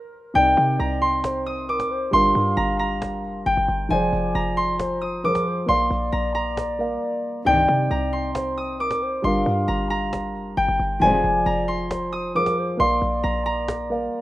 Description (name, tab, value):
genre	hip hop, trap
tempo	135 BPM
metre	4/4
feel	half-time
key	C minor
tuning	A4 = 444 Hz
part	concert harp	melody	0.0-14.2 s	Bb4 to Eb6	-22 LUFS	equal	none
part	dark grand piano	accompaniment	0.3-14.2 s	C3 to F5	-27 LUFS	equal	none
part	cajon	drums	0.3-14.1 s	none	-31 LUFS	equal	vintage 12-bit sampler grit
part	gliding portamento lead	second line	0.4-14.2 s	Bb4 to F5	-28 LUFS	left 1 dB	chorus, tape echo
part	short 808-style bass	bass	0.4-14.1 s	F1 to C3	-28 LUFS	equal	none
part	dark studio string section	stabs	7.5-7.9, 11.0-11.4 s	G2 to F3	-29 LUFS	left 1 dB	none
room	studio reverb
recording	rough home demo mix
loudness	-20 LUFS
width	side -16 dB against mid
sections	0.3-14.2 A section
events	break 0.0-0.3, 7.0-7.5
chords	0.3 Cmadd9; 2.1 Gm7; 3.9 Fm; 5.7 Bb; 7.5 Cmadd9; 9.2 Gm7; 11.0 Fm; 12.8 Bb